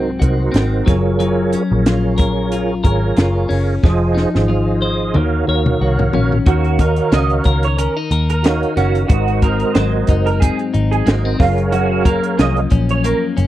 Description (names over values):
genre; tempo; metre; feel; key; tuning
indie pop, bedroom pop; 91 BPM; 4/4; swing 55% on 16ths; Eb dorian; A4 = 440 Hz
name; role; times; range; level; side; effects
clean electric guitar; accompaniment; 0.0-13.5 s; Gb2 to Db5; -20 LUFS; left 4 dB; lush chorus, vibrato effect
mellow tonewheel organ; accompaniment; 0.0-12.6 s; Eb4 to F5; -20 LUFS; right 4 dB; chorus vibrato, slow rotary speaker, cassette tape
vintage muted picked electric bass; bass; 0.0-13.5 s; F1 to Eb2; -18 LUFS; equal; none
compact cocktail drum kit; drums; 0.2-13.5 s; hi-hat, kick drum, snare drum, toms; -15 LUFS; equal; none
electric guitar through a small old amp; second line; 6.5-13.2 s; F4 to Eb5; -21 LUFS; right 5 dB; ensemble chorus, slapback echo
room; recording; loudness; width
studio reverb; dry, close 1970s-style studio recording; -13 LUFS; side -14 dB against mid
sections
0.0-6.5 A section; 6.5-13.5 B section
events
drum fill 3.8-6.5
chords
0.0 Ab7; 0.9 Gbmaj7; 3.8 Fm7; 5.2 Ebm7; 9.1 Ab7; 11.4 Gbmaj7